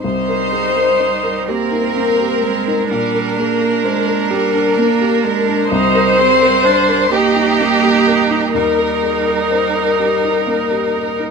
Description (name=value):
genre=neoclassical piano and strings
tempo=42 BPM (dotted quarters)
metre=6/8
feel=rubato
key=C minor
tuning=A4 = 438 Hz
part: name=rich chamber violin section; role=melody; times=0.0-11.2 s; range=G4 to C5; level=-16 LUFS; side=left 3 dB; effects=none
part: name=clear viola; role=accompaniment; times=0.0-11.2 s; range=C4 to Eb4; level=-20 LUFS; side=right 6 dB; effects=none
part: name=felt-muted upright piano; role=accompaniment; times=0.0-11.3 s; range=C2 to C5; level=-21 LUFS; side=left 1 dB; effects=none
part: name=rich cello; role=second line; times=0.1-11.2 s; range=G3 to Bb3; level=-20 LUFS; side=right 9 dB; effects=none
room=moderate large studio reverb, RT60 0.9 s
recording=minimal, uncompressed stereo recording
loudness=-13 LUFS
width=side -5 dB against mid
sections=0.0-11.3 A section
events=none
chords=0.0 Cm7; 2.9 Gm; 5.7 Cm7; 8.5 Eb